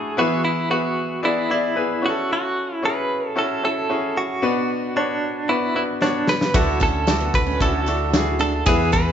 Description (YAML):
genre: piano-driven pop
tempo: 113 BPM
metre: 4/4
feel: straight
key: unclear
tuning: A4 = 440 Hz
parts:
  - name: direct-recorded clean electric guitar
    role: melody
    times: 0.0-9.1 s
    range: D4 to B4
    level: -23 LUFS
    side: right 2 dB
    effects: tremolo
  - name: bright concert grand piano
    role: accompaniment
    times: 0.0-9.1 s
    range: B2 to D5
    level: -22 LUFS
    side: left 2 dB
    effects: none
  - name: loose indie drum kit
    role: drums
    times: 6.0-9.1 s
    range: kick drum, ride cymbal, snare drum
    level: -22 LUFS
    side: equal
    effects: none
  - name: warm studio string section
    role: sustained chords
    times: 6.5-9.1 s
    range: D3 to B4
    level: -31 LUFS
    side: equal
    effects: none
  - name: picked steel-string acoustic guitar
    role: riff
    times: 6.5-9.1 s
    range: B3 to E4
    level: -29 LUFS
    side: right 6 dB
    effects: none
  - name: round analog bass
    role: bass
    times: 6.5-9.1 s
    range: D2 to E2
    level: -25 LUFS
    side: equal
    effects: none
  - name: tambourine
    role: percussion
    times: 6.5-9.1 s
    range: none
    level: -42 LUFS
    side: right 8 dB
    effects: none
room: wet large studio reverb, RT60 0.9 s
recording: band playing live in one room, nothing above 7.7 kHz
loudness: -18 LUFS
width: side -9 dB against mid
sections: 0.0-9.1 A section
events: drum fill 6.0-6.5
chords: 0.2 E; 2.0 F#m7; 4.4 Bm; 6.5 Dadd9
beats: | 0.17 0.70 1.23 1.76 | 2.30 2.83 3.36 3.89 | 4.42 4.95 5.48 6.01 | 6.54 7.08 7.61 8.14 | 8.67